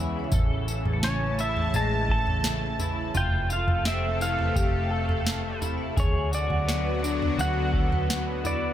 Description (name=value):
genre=dream pop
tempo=85 BPM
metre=4/4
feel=straight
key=A major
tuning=A4 = 440 Hz
part: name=lush unison pad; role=sustained chords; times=0.0-8.7 s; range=C3 to A5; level=-32 LUFS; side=equal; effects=chorus
part: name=electric guitar through a small old amp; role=arpeggios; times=0.0-8.7 s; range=E3 to A4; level=-33 LUFS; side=left 4 dB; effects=ensemble chorus, tape echo
part: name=vintage muted picked electric bass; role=bass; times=0.0-8.7 s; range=F1 to D2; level=-29 LUFS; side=equal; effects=none
part: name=vibraphone with hard mallets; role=texture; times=0.2-8.7 s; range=A3 to E5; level=-40 LUFS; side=right 3 dB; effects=tape echo
part: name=booming analog drum machine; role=drums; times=0.3-8.6 s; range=kick drum, snare drum, tambourine, toms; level=-28 LUFS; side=equal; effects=none
part: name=pedal steel guitar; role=melody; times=1.0-8.7 s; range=C#5 to A5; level=-30 LUFS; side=right 1 dB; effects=tape echo
room=light reverb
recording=none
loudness=-23 LUFS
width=side -11 dB against mid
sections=0.0-8.7 A section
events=none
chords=0.3 A; 3.1 Fmaj7; 6.0 D6